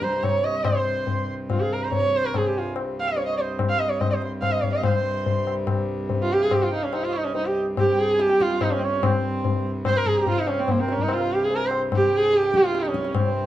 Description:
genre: indian classical, Hindustani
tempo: 144 BPM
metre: 5/4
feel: straight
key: C raga bhairavi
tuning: A4 = 440 Hz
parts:
  - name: dark sarangi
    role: melody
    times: 0.0-13.5 s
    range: Bb3 to F5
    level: -22 LUFS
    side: right 1 dB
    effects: none
  - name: pedal harmonium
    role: second line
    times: 0.0-13.5 s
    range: Bb4 to C6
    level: -33 LUFS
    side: right 5 dB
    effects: none
  - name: pedal harmonium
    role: drone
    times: 0.0-13.5 s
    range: C2 to G2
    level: -32 LUFS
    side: right 1 dB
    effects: none
  - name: tabla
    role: percussion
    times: 0.0-13.3 s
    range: none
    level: -26 LUFS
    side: left 4 dB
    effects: none
room: moderate small room reverb, RT60 0.5 s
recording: dark, warm production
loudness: -20 LUFS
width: side -13 dB against mid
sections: 0.0-4.9 A section; 4.9-13.5 B section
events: none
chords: none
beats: 0.24 | 0.66 1.08 1.50 1.92 2.34 | 2.76 3.18 3.60 4.01 4.43 | 4.85 5.27 5.69 6.10 6.52 | 6.94 7.36 7.77 8.19 8.61 | 9.02 9.44 9.85 10.27 10.68 | 11.10 11.51 11.93 12.34 12.75 | 13.17

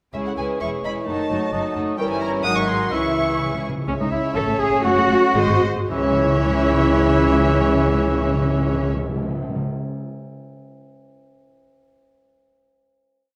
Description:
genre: quick classical-period movement for symphony orchestra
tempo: 106-132 BPM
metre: 2/4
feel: rubato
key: C# minor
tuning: A4 = 437 Hz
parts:
  - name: muted studio violin section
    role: melody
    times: 0.1-8.9 s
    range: D#5 to D#6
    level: -32 LUFS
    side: equal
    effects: none
  - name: mellow cor anglais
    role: second line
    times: 0.1-8.9 s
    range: E3 to F#5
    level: -28 LUFS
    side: equal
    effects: none
  - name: mellow hollow flute section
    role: second line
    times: 0.1-8.9 s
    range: G#4 to A5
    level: -32 LUFS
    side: equal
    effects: none
  - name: muted studio violin section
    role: second line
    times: 0.1-8.9 s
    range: D#4 to C#5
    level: -32 LUFS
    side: equal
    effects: none
  - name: muted studio viola section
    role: accompaniment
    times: 0.1-8.9 s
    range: E3 to E4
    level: -30 LUFS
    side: equal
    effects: none
  - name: warm bassoon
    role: accompaniment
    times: 0.1-3.6 s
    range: C#3 to F#3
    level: -32 LUFS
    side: equal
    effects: none
  - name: muted studio cello section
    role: bass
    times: 0.1-8.9 s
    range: C#2 to A4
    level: -26 LUFS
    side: equal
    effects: none
  - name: muted studio double bass section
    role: bass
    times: 0.1-8.9 s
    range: E1 to C#2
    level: -28 LUFS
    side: equal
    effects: none
  - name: dark French horn section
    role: sustained chords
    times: 0.2-8.9 s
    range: E3 to G#4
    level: -29 LUFS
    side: equal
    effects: none
  - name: timpani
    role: percussion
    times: 2.9-9.6 s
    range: C#3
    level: -28 LUFS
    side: equal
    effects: none
room: wet scoring stage reverb, RT60 1.6 s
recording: none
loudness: -20 LUFS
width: mono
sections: 0.1-3.9 A section; 3.9-5.9 coda; 5.9-8.1 final chord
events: timpani fill 2.9-3.9; slowing down 3.4-5.9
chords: 0.1 C#m; 0.6 C#m/E; 1.1 D#dim/F#; 2.0 Gdim7; 2.4 G#7; 2.9 C#m; 4.4 A; 4.8 F#m; 5.4 G#7; 5.9 C#m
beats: | 0.14 0.61 | 1.07 1.53 | 1.99 2.45 | 2.92 3.40 | 3.88 4.36 | 4.84 5.35 | 5.91 6.46 | 7.02 7.57

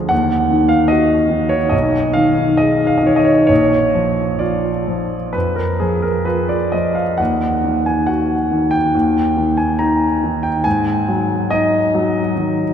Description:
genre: classical, romantic character piece for solo piano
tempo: 64-77 BPM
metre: 4/4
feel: rubato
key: Eb minor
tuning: A4 = 442 Hz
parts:
  - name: clear grand piano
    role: solo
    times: 0.0-12.7 s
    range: Bb1 to Bb5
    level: -14 LUFS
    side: equal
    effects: none
room: wet cathedral reverb, RT60 4.2 s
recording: dark, warm production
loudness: -14 LUFS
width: side -8 dB against mid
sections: 0.0-12.7 A section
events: none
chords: 0.1 Ebm; 1.7 Abm/Cb; 3.5 Bb; 7.2 Ebm; 8.9 N.C.; 10.7 Ab5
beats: | 0.11 0.91 1.73 2.60 | 3.50 4.42 5.35 6.27 | 7.19 8.09 8.94 9.81 | 10.65 11.52 12.37

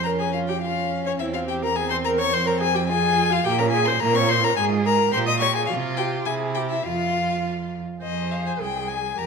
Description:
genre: quick classical-period movement for string quartet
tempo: 105 BPM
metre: 2/4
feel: straight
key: F minor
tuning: A4 = 440 Hz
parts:
  - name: warm violin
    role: melody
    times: 0.0-9.3 s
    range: Db5 to Eb6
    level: -24 LUFS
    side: left 8 dB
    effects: none
  - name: warm violin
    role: second line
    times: 0.0-9.3 s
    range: Bb3 to Ab4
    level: -30 LUFS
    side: left 1 dB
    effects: none
  - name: dark viola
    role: accompaniment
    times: 0.0-9.3 s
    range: Db4 to Eb5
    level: -26 LUFS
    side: right 2 dB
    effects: none
  - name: rich cello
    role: bass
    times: 0.0-9.3 s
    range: C2 to C3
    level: -26 LUFS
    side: right 6 dB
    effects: none
room: moderate recital hall reverb, RT60 1.4 s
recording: minimal, uncompressed stereo recording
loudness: -20 LUFS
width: side -5 dB against mid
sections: 0.0-8.0 A section; 8.0-9.3 A section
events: none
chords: 0.1 Bbm/F (rootless); 1.2 C/E; 2.3 F5; 3.5 Bbm13; 4.0 Bbmadd9; 4.6 Fm/Ab; 5.1 Bbm13; 5.7 F5/C; 6.3 C; 6.9 N.C.; 8.0 Fm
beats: | 0.06 0.63 | 1.21 1.77 | 2.34 2.90 | 3.46 4.02 | 4.58 5.14 | 5.70 6.28 | 6.86 7.44 | 8.03 8.60 | 9.18

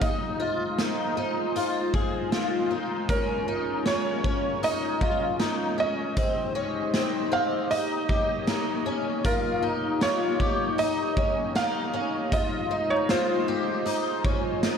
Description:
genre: dream pop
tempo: 78 BPM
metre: 4/4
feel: straight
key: Eb mixolydian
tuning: A4 = 444 Hz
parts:
  - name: felt-muted upright piano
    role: melody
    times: 0.0-14.8 s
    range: Bb4 to F5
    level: -29 LUFS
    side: right 3 dB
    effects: digital delay
  - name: phased analog pad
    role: sustained chords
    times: 0.0-14.8 s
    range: Ab3 to Eb5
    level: -30 LUFS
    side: left 1 dB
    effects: phaser, chorus
  - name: picked twelve-string acoustic guitar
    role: arpeggios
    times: 0.0-14.8 s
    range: C4 to Ab4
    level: -30 LUFS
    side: left 4 dB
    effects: ensemble chorus, digital delay
  - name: raw garage drum kit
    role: drums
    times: 0.0-14.8 s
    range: hi-hat, kick drum, snare drum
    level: -30 LUFS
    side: right 1 dB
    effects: none
room: moderate plate reverb, RT60 1.8 s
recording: none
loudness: -24 LUFS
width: side -7 dB against mid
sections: 0.0-9.2 A section; 9.2-14.8 A section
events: none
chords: 0.0 Fm7; 3.1 Bbm7; 6.2 Abmaj7; 7.7 Eb7; 12.3 Fm7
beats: | 0.01 0.78 1.55 2.32 | 3.09 3.86 4.63 5.40 | 6.17 6.94 7.71 8.47 | 9.24 10.01 10.78 11.55 | 12.32 13.09 13.86 14.63

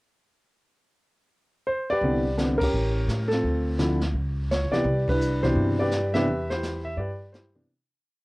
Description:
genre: jazz piano trio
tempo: 169 BPM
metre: 4/4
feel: swing 64% on 8ths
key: C major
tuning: A4 = 440 Hz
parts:
  - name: warm baby grand piano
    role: melody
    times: 1.7-7.7 s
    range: B2 to E5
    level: -24 LUFS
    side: equal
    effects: cassette tape
  - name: upright bass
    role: bass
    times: 2.0-7.6 s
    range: A1 to A2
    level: -27 LUFS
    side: equal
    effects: none
  - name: jazz brush drum kit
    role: drums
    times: 2.0-8.0 s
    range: brushed snare drum, hi-hat, kick drum, ride cymbal, snare drum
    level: -33 LUFS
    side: equal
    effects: cassette tape
room: little or no reverb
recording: home recording on cassette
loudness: -23 LUFS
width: side -22 dB against mid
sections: 0.6-2.0 pickup bar; 2.0-7.7 A section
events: band accent 2.5, 5.0; fade-out 6.3-7.7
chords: 0.6 N.C.; 2.0 Cmaj9; 2.7 A7b9; 3.4 Dm9; 4.1 C#m7; 4.8 Cmaj9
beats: | 0.61 0.96 1.31 1.67 | 2.02 2.37 2.72 3.08 | 3.43 3.79 4.14 4.49 | 4.85 5.20 5.56 5.91 | 6.27 6.62 6.98 7.33

